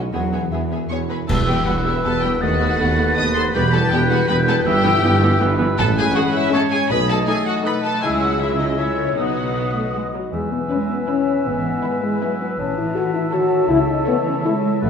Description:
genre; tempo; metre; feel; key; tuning
cinematic, playful, whimsical film cue; 160 BPM; 3/4; straight; E minor, E major from 5.8 s; A4 = 440 Hz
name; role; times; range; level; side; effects
warm studio viola section; accompaniment; 0.0-14.7 s; E3 to B4; -26 LUFS; right 2 dB; none
concert harp; arpeggios; 0.0-14.9 s; E2 to B5; -26 LUFS; left 7 dB; none
clear studio double bass section; bass; 0.0-14.9 s; E1 to E2; -26 LUFS; right 4 dB; none
warm tuba; bass; 0.0-10.1 s; E1 to D#2; -26 LUFS; right 3 dB; none
warm studio violin section; melody; 0.1-14.7 s; C#5 to D#6; -26 LUFS; left 2 dB; none
mellow hollow concert flute; second line; 0.1-14.9 s; E5 to A6; -26 LUFS; left 2 dB; none
rich studio violin section; second line; 0.1-14.7 s; C#4 to E5; -28 LUFS; left 4 dB; none
warm studio cello section; bass; 0.1-14.9 s; D#2 to G#3; -26 LUFS; right 4 dB; none
clear clarinet; second line; 1.3-14.9 s; G#4 to B4; -30 LUFS; left 2 dB; none
warm oboe; second line; 1.3-14.9 s; G4 to G5; -29 LUFS; right 3 dB; none
dark French horn section; sustained chords; 1.3-14.9 s; F#3 to B4; -23 LUFS; left 3 dB; none
clash cymbals and concert bass drum; percussion; 1.3-2.0 s; none; -26 LUFS; right 1 dB; none
room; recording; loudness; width
wet scoring stage reverb, RT60 1.7 s; minimal, uncompressed stereo recording; -16 LUFS; side -7 dB against mid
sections
0.0-1.3 A section; 1.3-10.3 B section; 10.3-14.9 A section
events
band accent 1.3-1.7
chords
0.1 E; 1.3 Em; 2.4 B7/D#; 3.5 Em; 4.7 Em/G; 5.8 Amaj7; 6.9 B7; 8.0 C#m; 9.2 B; 10.3 E; 11.5 E/G#; 12.6 A; 13.7 A/C#

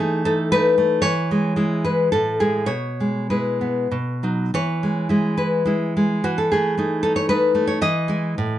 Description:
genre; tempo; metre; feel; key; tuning
romantic piece for solo classical guitar; 98-117 BPM; 3/4; rubato; E major; A4 = 440 Hz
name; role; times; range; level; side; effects
nylon-string guitar; solo; 0.0-8.6 s; A2 to D#5; -18 LUFS; equal; none
room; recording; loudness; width
light reverb; dark, warm production, nothing above 10.7 kHz; -18 LUFS; side -12 dB against mid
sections
0.0-8.6 A section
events
none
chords
0.0 B7/E; 1.1 E; 2.1 A5; 2.7 E/B; 3.9 B; 4.5 E; 6.2 Amaj9#11/E; 7.8 E

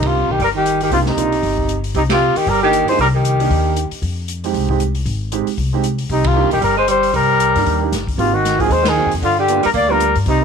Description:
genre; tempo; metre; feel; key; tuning
jazz, small-group swing and bop; 231 BPM; 4/4; swing 58% on 8ths; C minor; A4 = 440 Hz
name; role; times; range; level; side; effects
breathy trumpet; melody; 0.0-3.9, 6.1-10.4 s; Eb4 to D5; -17 LUFS; left 5 dB; none
warm tenor saxophone; second line; 0.0-3.9, 6.1-10.4 s; C3 to A#3; -20 LUFS; right 13 dB; none
warm baby grand piano; accompaniment; 0.0-10.4 s; C3 to Bb4; -23 LUFS; right 14 dB; none
upright bass; bass; 0.0-10.4 s; G1 to G2; -20 LUFS; left 2 dB; none
open jazz drum kit; drums; 0.0-10.3 s; hi-hat, kick drum, ride cymbal, snare drum; -26 LUFS; left 2 dB; none
room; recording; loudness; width
light reverb; 1960s-style stereo; -14 LUFS; side -6 dB against mid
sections
0.0-10.4 A section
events
band accent 0.0, 2.1, 6.2, 8.8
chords
0.0 Cm7; 4.0 Fm7; 6.1 Cm7; 8.2 Ab7; 9.2 G7#9

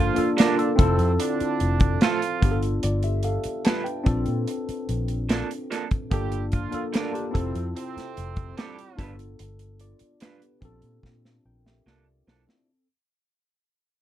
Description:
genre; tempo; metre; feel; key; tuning
lush 1970s-style soul; 73 BPM; 4/4; straight; unclear; A4 = 440 Hz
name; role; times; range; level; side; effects
tine electric piano; accompaniment; 0.0-12.9 s; Bb3 to A5; -28 LUFS; left 2 dB; analog chorus
mellow horn section; stabs; 0.0-9.2 s; C3 to G4; -30 LUFS; right 7 dB; none
vintage muted fingered electric bass; bass; 0.0-12.4 s; F1 to Bb2; -26 LUFS; equal; none
modern studio drum kit; drums; 0.2-12.7 s; hi-hat, kick drum, snare drum; -23 LUFS; equal; none
electric guitar through a small old amp; riff; 0.4-12.4 s; F3 to B4; -28 LUFS; right 8 dB; none
room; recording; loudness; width
little or no reverb; dark, warm production; -22 LUFS; side -12 dB against mid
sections
0.0-12.7 A section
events
fade-out 0.0-12.7; drum fill 11.0-12.7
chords
0.0 Gm7; 0.8 Dm7/F; 2.4 G7; 4.1 Bbmaj7; 6.1 Gm7; 7.3 Dm7/F (rootless); 9.0 G7; 10.6 Bbmaj7

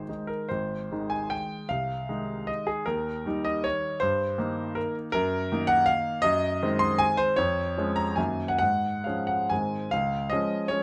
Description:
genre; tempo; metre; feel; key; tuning
classical, romantic triple-time dance for piano with dotted rhythms; 128-170 BPM; 3/4; rubato; Ab major, Db major from 5.1 s; A4 = 440 Hz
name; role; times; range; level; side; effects
clear grand piano; solo; 0.0-10.8 s; Ab1 to C6; -27 LUFS; equal; none
room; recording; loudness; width
light reverb; none; -27 LUFS; mono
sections
0.5-9.9 A section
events
none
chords
0.0 Ab; 1.7 Ab/C; 2.9 Eb; 4.0 Eb/G; 5.1 Ebm/Gb; 6.2 Ab7/Gb; 7.4 Db/F; 8.2 Ebm/Gb; 8.6 Db/Ab; 9.5 Ab; 9.9 Db

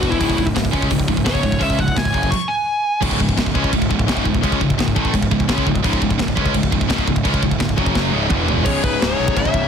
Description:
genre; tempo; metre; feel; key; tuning
heavy metal; 170 BPM; 4/4; straight; C# minor; A4 = 440 Hz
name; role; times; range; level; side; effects
high-gain lead guitar; melody; 0.0-3.0, 8.7-9.7 s; E4 to C#6; -22 LUFS; left 1 dB; distortion, tape echo
scooped high-gain guitar; riff; 0.0-8.7 s; C#2 to C#4; -22 LUFS; right 10 dB; distortion
tight distorted guitar; riff; 0.0-9.7 s; C#2 to C#4; -23 LUFS; left 13 dB; distortion
fuzz picked electric bass; bass; 0.0-9.7 s; C#1 to C#2; -23 LUFS; equal; overdrive
tight metal drum kit; drums; 0.0-9.6 s; china cymbal, crash cymbal, hi-hat, kick drum, snare drum, toms; -20 LUFS; equal; none
high-gain distorted guitar; riff; 3.0-9.7 s; C#2 to C#4; -26 LUFS; left 1 dB; distortion
high-gain lead guitar; second line; 8.6-9.7 s; G#4 to C#5; -28 LUFS; right 5 dB; distortion
room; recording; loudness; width
little or no reverb; dense, heavily limited modern master; -16 LUFS; side -7 dB against mid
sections
0.0-3.0 A section; 3.0-8.7 B section; 8.7-9.7 C section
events
lead electric guitar solo 0.0-3.0; drum fill 7.9-8.7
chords
0.2 C#5; 2.1 F#5; 2.5 N.C.; 3.0 C#5; 7.8 F#5; 8.1 C#5; 8.3 E5; 8.7 C#m

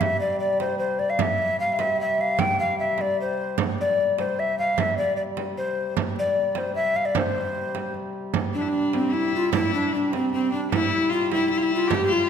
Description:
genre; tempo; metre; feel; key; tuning
medieval dance; 151 BPM; 3/4; straight; C major; A4 = 436 Hz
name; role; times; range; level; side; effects
breathy mellow tenor recorder; melody; 0.0-12.3 s; C4 to G5; -23 LUFS; left 1 dB; none
hand-pumped harmonium; drone; 0.0-12.3 s; C3 to G3; -33 LUFS; left 1 dB; none
frame drum; percussion; 0.0-12.1 s; none; -28 LUFS; right 6 dB; none
rich viola da gamba; second line; 8.5-12.3 s; C4 to G4; -26 LUFS; left 4 dB; none
room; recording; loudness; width
wet scoring stage reverb, RT60 1.5 s; none; -21 LUFS; side -7 dB against mid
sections
0.0-8.3 A section; 8.3-12.3 A section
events
none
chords
none

